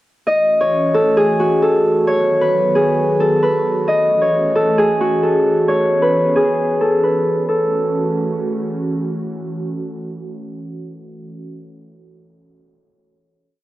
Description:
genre	hip hop, trap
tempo	133 BPM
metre	4/4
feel	half-time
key	F# dorian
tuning	A4 = 439 Hz
part	Celtic harp	melody	0.3-9.7 s	F#4 to D#5	-14 LUFS	equal	plate reverb
part	airy breathy pad	sustained chords	0.3-11.6 s	D#3 to G#4	-24 LUFS	right 1 dB	chorus, cassette tape
room	moderate small room reverb, RT60 0.5 s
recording	home recording on cassette, low-pass filter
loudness	-14 LUFS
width	side -16 dB against mid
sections	0.3-7.5 breakdown; 7.5-11.1 final chord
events	filter sweep 0.3-7.5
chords	0.3 F#m7; 2.1 B; 3.9 F#m7; 5.7 C#m7; 7.5 F#m7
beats	| 0.27 0.72 1.17 1.62 | 2.07 2.52 2.97 3.42 | 3.88 4.33 4.78 5.23 | 5.68 6.13 6.58 7.03 | 7.49 7.94 8.39 8.84 | 9.29 9.74 10.19 10.64

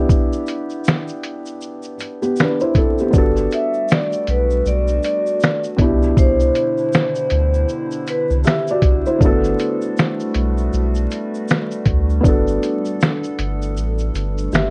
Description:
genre	lo-fi hip hop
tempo	79 BPM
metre	4/4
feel	swing 60% on 16ths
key	G major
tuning	A4 = 440 Hz
part	felt-muted upright piano	accompaniment	0.0-14.7 s	B2 to E5	-24 LUFS	equal	low-pass filter, plate reverb
part	round analog bass	bass	0.0-14.7 s	G1 to D2	-22 LUFS	equal	tube saturation
part	lo-fi sampler-style drum kit	drums	0.1-14.7 s	finger snaps, hi-hat, kick drum, shaker, snare drum	-20 LUFS	equal	none
part	tube shaker	percussion	0.1-14.7 s	none	-48 LUFS	equal	none
part	warbly tape-like pad	sustained chords	3.7-14.7 s	D3 to C5	-30 LUFS	equal	chorus, built-in reverb, phaser, low-pass filter, plate reverb
part	vibraphone with hard mallets	melody	3.5-8.3 s	B4 to E5	-23 LUFS	equal	low-pass filter, plate reverb
room	light reverb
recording	worn, warbling old tape, cassette tape, vinyl crackle, warbly pitch drift, nothing above 10.5 kHz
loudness	-18 LUFS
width	mono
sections	0.0-14.7 A section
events	break 0.1-3.1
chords	0.0 Cmaj9; 3.1 Gmaj9; 5.8 Cmaj9; 9.2 Gmaj9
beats	| 0.09 0.85 1.61 2.37 | 3.13 3.89 4.65 5.41 | 6.17 6.93 7.69 8.45 | 9.21 9.97 10.73 11.49 | 12.24 13.01 13.76 14.52

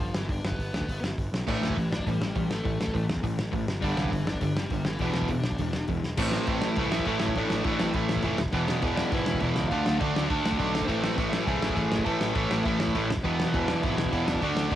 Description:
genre	punk rock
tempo	204 BPM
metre	4/4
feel	straight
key	A harmonic minor from 6.2 s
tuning	A4 = 444 Hz
part	dark smooth lead guitar	melody	0.0-14.8 s	E3 to A5	-35 LUFS	left 2 dB	overdrive, cassette tape, analog delay
part	fuzz picked electric bass	bass	0.0-14.8 s	E1 to E2	-32 LUFS	equal	overdrive
part	loose indie drum kit	drums	0.1-14.8 s	crash cymbal, hi-hat, kick drum, snare drum	-31 LUFS	equal	cassette tape
part	crunchy overdriven guitar	riff	1.5-14.8 s	E2 to D4	-30 LUFS	right 6 dB	cassette tape
part	sludgy distorted guitar	riff	1.5-14.8 s	E2 to D4	-30 LUFS	left 5 dB	overdrive, cassette tape
room	studio reverb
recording	home recording on cassette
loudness	-25 LUFS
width	side -12 dB against mid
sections	0.0-6.2 A section; 6.2-14.8 B section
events	drum fill 6.0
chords	0.0 G; 1.5 A5; 3.7 G5; 5.0 E5; 6.2 Am; 8.4 E5; 9.7 Dm; 10.9 Am; 13.1 E5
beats	| 0.29 0.58 0.88 1.17 | 1.47 1.76 2.06 2.35 | 2.65 2.94 3.24 3.53 | 3.83 4.12 4.42 4.71 | 5.01 5.30 5.60 5.89 | 6.19 6.48 6.78 7.07 | 7.36 7.66 7.95 8.25 | 8.54 8.83 9.13 9.42 | 9.72 10.01 10.30 10.60 | 10.89 11.19 11.48 11.78 | 12.07 12.37 12.66 12.95 | 13.25 13.54 13.84 14.13 | 14.42 14.72

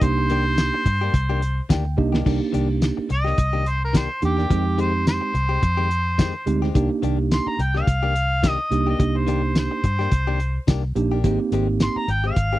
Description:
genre	straight-eighth soul blues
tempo	107 BPM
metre	4/4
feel	swing 56% on 16ths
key	C minor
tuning	A4 = 440 Hz
part	mellow harmonica	melody	0.0-12.6 s	G4 to C6	-25 LUFS	equal	overdrive, slapback echo
part	mellow tine electric piano	accompaniment	0.0-12.1 s	Ab3 to G5	-24 LUFS	right 5 dB	none
part	direct-recorded clean electric guitar	stabs	0.0-12.6 s	Eb3 to G4	-29 LUFS	left 10 dB	none
part	vintage muted fingered electric bass	bass	0.0-12.6 s	Ab1 to G2	-23 LUFS	equal	none
part	cloth-damped thuddy drum kit	drums	0.0-12.5 s	crash cymbal, hi-hat, kick drum, snare drum, tambourine	-20 LUFS	equal	none
room	little or no reverb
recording	dry, close 1970s-style studio recording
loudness	-19 LUFS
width	side -16 dB against mid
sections	0.0-2.3 A section; 2.3-12.6 A section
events	harmonica solo 0.0-2.3, 2.3-12.6; tine electric piano fill 1.4-2.3; drum fill 2.0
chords	0.0 Cm9; 4.5 Fm9; 6.7 Cm9; 11.2 Abmaj7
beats	| 0.01 0.58 1.14 1.70 | 2.26 2.82 3.38 3.94 | 4.50 5.07 5.63 6.19 | 6.75 7.31 7.87 8.43 | 8.99 9.56 10.12 10.68 | 11.24 11.80 12.37

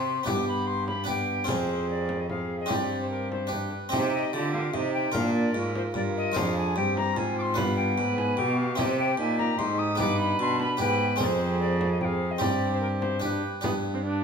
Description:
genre	classical, renaissance-style consort dance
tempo	148 BPM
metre	3/4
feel	straight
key	unclear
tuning	A4 = 441 Hz
part	alto recorder	melody	0.0-14.2 s	Bb4 to Eb6	-31 LUFS	left 3 dB	none
part	warm viola	second line	0.0-14.2 s	B3 to B4	-34 LUFS	right 5 dB	none
part	harpsichord	accompaniment	0.0-14.2 s	F2 to Eb5	-31 LUFS	right 1 dB	none
part	warm trombone	accompaniment	0.0-14.2 s	B3 to F4	-32 LUFS	left 2 dB	none
part	rich cello	bass	0.0-14.2 s	F2 to D3	-30 LUFS	right 2 dB	none
part	frame drum	percussion	0.3-13.8 s	none	-36 LUFS	left 3 dB	none
room	wet large studio reverb, RT60 1.3 s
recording	minimal, uncompressed stereo recording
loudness	-24 LUFS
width	side -6 dB against mid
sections	0.0-3.9 A section; 3.9-13.6 A section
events	none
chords	0.3 G; 1.5 Fm; 2.7 Gsus4; 3.5 G; 3.9 Cm; 5.1 Bb; 6.4 Fm; 7.6 G; 8.8 Cm; 10.0 G; 11.2 Fm; 12.4 Gsus4; 13.2 G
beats	| 0.28 0.68 1.08 | 1.49 1.89 2.30 | 2.70 3.11 3.52 | 3.93 4.34 4.74 | 5.15 5.55 5.96 | 6.37 6.77 7.17 | 7.58 7.98 8.38 | 8.79 9.19 9.59 | 9.99 10.40 10.80 | 11.20 11.60 12.01 | 12.41 12.82 13.23 | 13.63 14.04

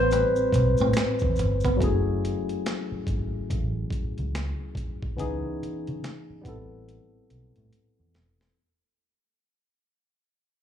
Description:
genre	R&B, neo-soul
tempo	71 BPM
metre	4/4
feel	swing 61% on 16ths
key	F# dorian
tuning	A4 = 440 Hz
part	clean electric guitar	second line	0.0-1.8 s	B3 to C4	-31 LUFS	right 6 dB	analog chorus, slapback echo
part	barky tine electric piano	accompaniment	0.0-8.6 s	E3 to C5	-28 LUFS	left 2 dB	auto-pan, slapback echo
part	vintage muted fingered electric bass	bass	0.0-8.5 s	E1 to C#3	-27 LUFS	equal	none
part	boom bap sampler-style drum kit	drums	0.1-8.6 s	hi-hat, kick drum, snare drum	-30 LUFS	equal	none
part	maracas and finger snaps	percussion	0.1-1.8 s	none	-46 LUFS	left 3 dB	none
room	digital ambience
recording	live gig heard through the venue's PA, club reverb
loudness	-24 LUFS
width	side -9 dB against mid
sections	0.0-1.8 A section; 1.8-8.6 B section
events	tine electric piano solo 0.0-1.8; fade-out 1.8-8.6; drum fill 6.9-8.6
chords	0.0 Am9; 1.8 F#m9; 5.2 C#m9; 6.4 Am9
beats	0.11 0.95 | 1.80 2.64 3.49 4.33 | 5.18 6.02 6.87 7.71

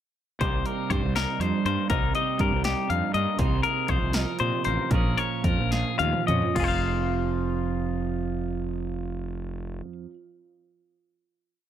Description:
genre	math rock and midwest emo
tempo	68-80 BPM (dotted quarters)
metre	6/8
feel	straight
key	F minor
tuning	A4 = 440 Hz
part	twelve-string electric guitar	accompaniment	0.4-10.1 s	F2 to Bb4	-29 LUFS	right 8 dB	spring reverb
part	clean electric guitar	arpeggios	0.4-9.9 s	F4 to F5	-28 LUFS	left 8 dB	none
part	fuzz fingered electric bass	bass	0.4-9.8 s	F1 to Bb2	-29 LUFS	equal	overdrive
part	punchy analog drum machine	drums	0.4-6.7 s	crash cymbal, hi-hat, kick drum, snare drum, toms	-28 LUFS	equal	none
room	light reverb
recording	none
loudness	-23 LUFS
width	side -10 dB against mid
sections	0.4-6.6 A section; 6.6-10.1 final chord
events	slowing down 3.4-6.6; drum fill 5.7-6.6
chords	0.4 Cm7; 3.4 Fm7/C; 4.9 Bbm7; 6.6 Fm7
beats	| 0.41 1.15 | 1.90 2.65 | 3.39 4.14 | 4.91 5.72 | 6.57 7.44 | 8.32 9.20

